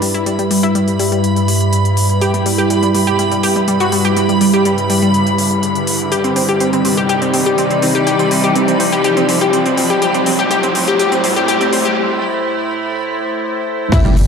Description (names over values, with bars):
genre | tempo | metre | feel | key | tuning
progressive house | 123 BPM | 4/4 | straight | unclear | A4 = 440 Hz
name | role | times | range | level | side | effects
evolving wavetable pad | sustained chords | 0.0-14.3 s | G2 to D5 | -17 LUFS | equal | chorus, built-in reverb, sidechain pumping
analog pluck | arpeggios | 0.0-14.3 s | G3 to G4 | -15 LUFS | equal | chorus, sidechain pumping, tape echo
big-room dance drum kit | drums | 0.0-14.3 s | crash cymbal, hi-hat, shaker | -22 LUFS | left 1 dB | overdrive, small room ambience
riser and impact | sound effects | 2.0-14.3 s | none | -22 LUFS | equal | none
backwards swelling texture | texture | 0.0-12.0 s | B5 | -24 LUFS | right 1 dB | built-in reverb, sidechain pumping
electronic kick drum | drums | 13.9-14.0 s | none | -13 LUFS | equal | overdrive, small room ambience
round analog bass | bass | 14.2-14.3 s | G1 | -11 LUFS | equal | sidechain pumping
room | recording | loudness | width
wet lush hall reverb, RT60 1.7 s | dark, warm production, high-pass filter | -12 LUFS | side -6 dB against mid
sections
0.0-13.9 A section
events
build-up 0.0-13.9; riser 2.0-12.0; break 12.0-13.9; impact 13.9-14.3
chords
0.0 G6; 6.1 Cmadd9; 10.0 Am